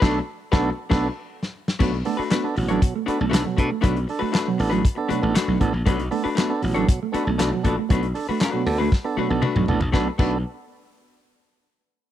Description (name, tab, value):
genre	funk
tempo	118 BPM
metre	4/4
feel	straight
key	B minor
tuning	A4 = 441 Hz
part	vintage hollow-body jazz guitar	accompaniment	0.0-10.3 s	A3 to C#5	-26 LUFS	left 6 dB	none
part	tonewheel organ	stabs	0.0-10.4 s	B2 to A4	-27 LUFS	right 5 dB	overdrive
part	glassy slap bass	bass	0.0-10.4 s	A1 to B2	-24 LUFS	left 1 dB	none
part	warm soul drum kit	drums	0.0-10.3 s	crash cymbal, handclaps, hi-hat, kick drum, snare drum, toms	-22 LUFS	left 1 dB	none
part	mellow electric guitar	riff	1.8-10.4 s	F#3 to B3	-28 LUFS	right 9 dB	vibrato effect
room	studio reverb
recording	dry, close 1970s-style studio recording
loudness	-20 LUFS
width	side -12 dB against mid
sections	0.0-1.8 A section; 1.8-9.9 B section; 9.9-12.0 C section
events	band accent 0.0-1.8; drum fill 1.3-1.8, 8.9-9.9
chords	0.0 Bm7